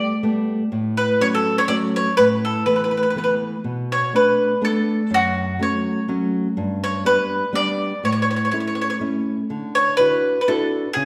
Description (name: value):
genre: italian folk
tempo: 123 BPM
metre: 3/4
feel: swing 53% on 8ths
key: D major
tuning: A4 = 439 Hz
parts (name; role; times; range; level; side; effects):
- bowl-back mandolin; melody; 0.0-11.1 s; F#4 to D5; -21 LUFS; equal; none
- nylon-string guitar; accompaniment; 0.0-11.1 s; F#2 to F#4; -25 LUFS; equal; none
room: wet recital hall reverb, RT60 1.6 s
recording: recorded in a church or concert hall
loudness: -20 LUFS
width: mono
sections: 0.0-11.1 A section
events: none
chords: 0.0 Gadd9; 0.7 F#m/A; 2.2 Asus2; 3.6 Bm7; 5.1 F#m; 6.6 G; 8.0 A; 9.5 Dadd9